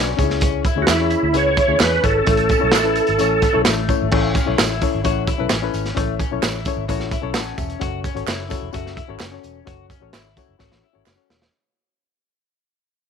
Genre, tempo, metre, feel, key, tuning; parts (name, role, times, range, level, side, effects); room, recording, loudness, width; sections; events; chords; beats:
uptempo 1960s-style soul; 130 BPM; 4/4; straight; A major; A4 = 441 Hz
barky reed electric piano; accompaniment; 0.0-11.4 s; C#4 to A5; -24 LUFS; left 13 dB; overdrive
electric guitar at the edge of break-up; riff; 0.0-11.5 s; A3 to F#4; -29 LUFS; left 14 dB; analog chorus
vintage muted fingered electric bass; bass; 0.0-11.5 s; E1 to E2; -25 LUFS; right 2 dB
crunchy breakbeat drum kit; drums; 0.2-11.5 s; crash cymbal, hi-hat, kick drum, snare drum; -21 LUFS; right 2 dB
tambourine and handclaps; percussion; 0.2-11.4 s; -29 LUFS; right 16 dB
bright tonewheel organ; melody; 0.8-3.6 s; E4 to C#5; -18 LUFS; right 3 dB; chorus vibrato, fast rotary speaker, slapback echo
light reverb, small room ambience; 1960s-style stereo with parts hard left and right; -16 LUFS; side -7 dB against mid
0.0-4.1 A section; 4.1-11.5 B section
fade-out 4.1-11.5; reed electric piano fill 6.9-7.8; drum fill 10.6-11.5
0.2 C#m; 2.3 A; 7.8 F#m
| 0.42 0.89 1.35 1.81 | 2.27 2.73 3.19 3.66 | 4.12 4.58 5.04 5.50 | 5.97 6.43 6.89 7.36 | 7.82 8.28 8.75 9.21 | 9.67 10.14 10.60 11.07